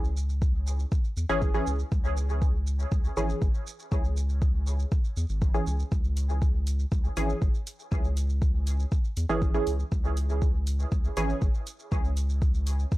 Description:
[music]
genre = dub techno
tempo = 120 BPM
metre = 4/4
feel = straight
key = C# minor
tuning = A4 = 440 Hz
[part]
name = round analog bass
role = bass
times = 0.0-12.9 s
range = G#1 to E2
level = -28 LUFS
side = equal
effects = sidechain pumping
[part]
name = electronic shaker and hi-hat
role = drums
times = 0.0-13.0 s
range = none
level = -45 LUFS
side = right 3 dB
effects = none
[part]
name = electronic kick drum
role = drums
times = 0.4-13.0 s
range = none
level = -26 LUFS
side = equal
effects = none
[part]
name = filtered dub chord stab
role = stabs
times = 1.3-11.5 s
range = E3 to G#4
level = -32 LUFS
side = right 1 dB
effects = chorus, phaser, sidechain pumping, dub echo
[sound]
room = little or no reverb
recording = dry, gritty hardware recording, transformer saturation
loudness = -25 LUFS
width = side -18 dB against mid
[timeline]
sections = 0.0-13.0 A section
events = none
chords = 0.0 C#m

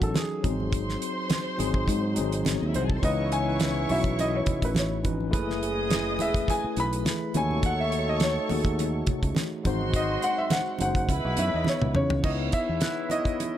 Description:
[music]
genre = lush 1970s-style soul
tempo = 104 BPM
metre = 4/4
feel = swing 54% on 16ths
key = C# minor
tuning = A4 = 440 Hz
[part]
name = warm concert grand piano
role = melody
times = 0.0-13.6 s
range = G#4 to B5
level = -30 LUFS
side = left 1 dB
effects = tape echo
[part]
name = warm studio violin section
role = second line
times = 0.0-11.9 s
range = C#4 to D#6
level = -35 LUFS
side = left 1 dB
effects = none
[part]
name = tine electric piano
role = accompaniment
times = 0.0-13.6 s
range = E3 to C#5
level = -31 LUFS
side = left 2 dB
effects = medium stereo tremolo
[part]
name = fingered electric bass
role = bass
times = 0.0-12.8 s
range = E1 to C#3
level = -29 LUFS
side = equal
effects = none
[part]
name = damped 70s drum kit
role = drums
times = 0.0-13.5 s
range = crash cymbal, hi-hat, kick drum, snare drum, toms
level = -28 LUFS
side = equal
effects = none
[part]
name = congas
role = percussion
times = 0.1-13.5 s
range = none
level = -35 LUFS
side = right 5 dB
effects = none
[part]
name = mellow horn section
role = stabs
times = 3.0-13.6 s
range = E3 to A4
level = -34 LUFS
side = right 3 dB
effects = none
[part]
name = celesta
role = texture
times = 12.8-13.6 s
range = F#6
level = -42 LUFS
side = left 2 dB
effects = none
[sound]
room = light reverb, small room ambience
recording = none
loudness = -24 LUFS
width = side -11 dB against mid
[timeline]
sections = 0.0-12.2 A section; 12.2-13.6 B section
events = grand piano solo 0.0-12.2; drum fill 11.7-12.2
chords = 0.4 G#7; 3.0 C#m9; 5.3 F#m11; 7.3 D#m7b5; 9.6 G#7; 11.1 C#m9

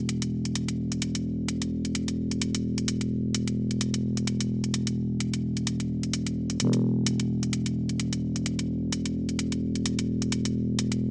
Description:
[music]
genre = bass house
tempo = 129 BPM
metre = 4/4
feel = swing 56% on 16ths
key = unclear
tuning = A4 = 441 Hz
[part]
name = growling FM bass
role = bass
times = 0.0-11.1 s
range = E1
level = -29 LUFS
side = equal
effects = none
[part]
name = electronic hi-hat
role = drums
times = 0.1-11.0 s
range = none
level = -33 LUFS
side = equal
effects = none
[sound]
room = little or no reverb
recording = small speaker sound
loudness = -28 LUFS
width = mono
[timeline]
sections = 0.0-11.1 A section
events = none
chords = none

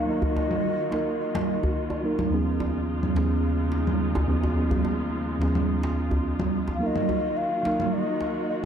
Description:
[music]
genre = organic downtempo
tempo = 107 BPM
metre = 4/4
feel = straight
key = Eb minor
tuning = A4 = 436 Hz
[part]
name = bass bansuri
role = melody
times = 0.0-2.0, 6.7-8.6 s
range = Eb5 to F5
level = -29 LUFS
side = left 3 dB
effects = ping-pong delay
[part]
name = muted felt-like synth keys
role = accompaniment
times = 0.0-8.7 s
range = Eb2 to Bb4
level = -26 LUFS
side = right 1 dB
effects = chorus
[part]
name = muted studio string section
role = sustained chords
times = 0.0-8.7 s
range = Eb2 to Gb4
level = -31 LUFS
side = equal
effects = low-pass filter
[part]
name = santur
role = arpeggios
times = 0.0-1.0 s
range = none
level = barely audible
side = none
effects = none
[part]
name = djembe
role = percussion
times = 0.2-8.3 s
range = none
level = -31 LUFS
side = equal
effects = none
[part]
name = congas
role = drums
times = 0.5-7.9 s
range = none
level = -29 LUFS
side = right 2 dB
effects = overdrive, low-pass filter on hats, low-pass filter on perc, low-pass filter on snare, low-pass filter on room
[sound]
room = moderate lush hall reverb, RT60 1.9 s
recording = dark, warm production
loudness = -23 LUFS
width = side -8 dB against mid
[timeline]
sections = 0.0-8.7 A section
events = none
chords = 0.0 Ebm; 2.3 Db7/Eb; 6.8 Ebm

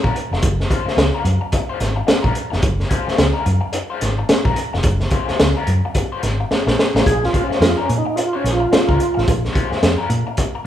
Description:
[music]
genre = funk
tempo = 109 BPM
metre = 4/4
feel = swing 60% on 16ths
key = Bb minor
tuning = A4 = 440 Hz
[part]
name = raw garage guitar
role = accompaniment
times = 0.0-10.6 s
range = Ab3 to C5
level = -25 LUFS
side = left 4 dB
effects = wah, overdrive
[part]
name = hollow-body short-scale fingered electric bass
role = bass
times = 0.0-10.2 s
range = F1 to Bb2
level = -21 LUFS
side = equal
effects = none
[part]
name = crunchy breakbeat drum kit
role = drums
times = 0.0-10.5 s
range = hi-hat, kick drum, snare drum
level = -18 LUFS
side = equal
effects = none
[part]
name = percussive tonewheel organ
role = melody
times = 7.1-9.3 s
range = Db4 to Ab4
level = -20 LUFS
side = right 2 dB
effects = overdrive, chorus vibrato, slow rotary speaker
[sound]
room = moderate large studio reverb, RT60 1.2 s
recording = band playing live in one room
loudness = -15 LUFS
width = side -11 dB against mid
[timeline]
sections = 0.0-7.1 A section; 7.1-10.7 B section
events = drum fill 6.5-7.1; tonewheel organ solo 7.1-10.7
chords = 0.0 Gbmaj9; 7.1 Bbm7

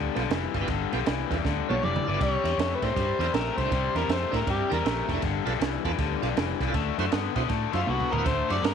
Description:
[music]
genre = electric blues shuffle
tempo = 158 BPM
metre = 4/4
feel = swing 63% on 8ths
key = G mixolydian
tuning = A4 = 440 Hz
[part]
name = overdriven electric guitar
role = riff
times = 0.0-8.7 s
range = G2 to B3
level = -29 LUFS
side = left 13 dB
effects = none
[part]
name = vintage muted fingered electric bass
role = bass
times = 0.0-8.7 s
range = F1 to B2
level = -31 LUFS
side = right 1 dB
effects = none
[part]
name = bright tonewheel organ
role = accompaniment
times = 0.1-8.6 s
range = B3 to D5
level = -36 LUFS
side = right 11 dB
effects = slow rotary speaker, overdrive
[part]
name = compact cocktail drum kit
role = drums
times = 0.2-8.7 s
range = kick drum, ride cymbal, snare drum, toms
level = -31 LUFS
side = right 5 dB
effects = none
[part]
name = overdriven harmonica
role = melody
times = 1.7-5.1, 7.8-8.7 s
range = F4 to D5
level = -29 LUFS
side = equal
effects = none
[sound]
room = light reverb, small room reverb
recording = 1960s-style stereo with parts hard left and right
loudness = -24 LUFS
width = side -7 dB against mid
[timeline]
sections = 0.0-8.7 A section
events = drum fill 1.4-2.2, 7.9-8.3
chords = 0.0 G7; 2.2 C7; 5.2 G7; 6.7 D7

